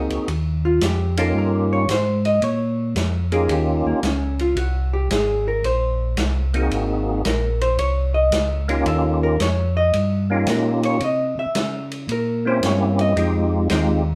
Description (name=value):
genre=soul jazz organ trio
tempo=112 BPM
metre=4/4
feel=swing 68% on 8ths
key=Eb mixolydian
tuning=A4 = 440 Hz
part: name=percussive tonewheel organ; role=melody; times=0.0-14.0 s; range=Ab3 to Ab4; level=-24 LUFS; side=equal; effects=slow rotary speaker, chorus vibrato
part: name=vintage hollow-body jazz guitar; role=accompaniment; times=0.0-13.5 s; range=Bb3 to E5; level=-25 LUFS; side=equal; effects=none
part: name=mellow tonewheel organ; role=bass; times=0.0-14.2 s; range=Ab1 to Db3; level=-24 LUFS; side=equal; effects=slow rotary speaker
part: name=swinging big-band drum kit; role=drums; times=0.1-13.9 s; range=hi-hat, ride cymbal, snare drum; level=-31 LUFS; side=equal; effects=none
room=wet studio reverb, RT60 0.6 s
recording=heard from further back in the room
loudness=-20 LUFS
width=mono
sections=0.0-14.2 A section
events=hollow-body jazz guitar solo 0.0-14.2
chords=0.3 Eb9; 2.4 Bbm; 3.5 Eb9; 4.6 Ab9; 8.9 Eb9; 11.0 C7b9; 13.2 Fm7